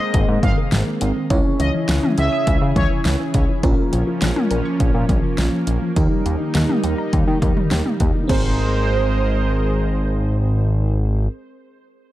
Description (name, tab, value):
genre	synth-pop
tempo	103 BPM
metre	4/4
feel	straight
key	Ab major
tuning	A4 = 441 Hz
part	analog synth brass	second line	0.0-2.9, 8.3-10.0 s	C5 to F5	-26 LUFS	right 2 dB	chorus, tape echo
part	FM electric piano	accompaniment	0.0-11.3 s	C4 to Db5	-26 LUFS	right 2 dB	chorus
part	lush unison pad	sustained chords	0.0-11.3 s	Db3 to Eb5	-26 LUFS	right 1 dB	chorus
part	resonant blip pluck	arpeggios	0.0-11.3 s	Eb3 to Eb6	-28 LUFS	left 2 dB	phaser, tape echo
part	fat analog bass	bass	0.1-11.3 s	Ab1 to Eb3	-20 LUFS	equal	none
part	deep house drum kit	drums	0.1-8.4 s	crash cymbal, hi-hat, kick drum, snare drum, toms	-20 LUFS	equal	overdrive
room	light reverb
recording	dark, warm production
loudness	-16 LUFS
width	side -15 dB against mid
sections	0.0-8.3 A section; 8.3-10.6 B section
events	none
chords	0.0 Abadd9; 1.3 Dbm; 3.6 Bbm; 6.0 Eb; 8.3 Abadd9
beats	0.14 0.72 | 1.30 1.89 2.47 3.05 | 3.63 4.22 4.80 5.38 | 5.96 6.55 7.13 7.71 | 8.29 8.88 9.46 10.04